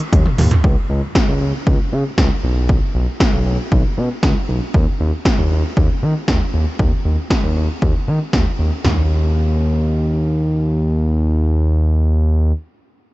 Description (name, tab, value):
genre	synth-pop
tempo	117 BPM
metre	4/4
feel	straight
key	unclear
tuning	A4 = 440 Hz
part	80s electronic pad drums	drums	0.0-9.0 s	hi-hat, kick drum, snare drum, toms	-17 LUFS	equal	gated reverb on snare and toms
part	smooth gliding synth bass	bass	0.1-12.5 s	B1 to Eb3	-16 LUFS	equal	none
room	light reverb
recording	nothing above 8.0 kHz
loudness	-14 LUFS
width	side -19 dB against mid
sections	0.6-8.8 A section; 8.8-12.9 B section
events	drum fill 0.1-0.6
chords	none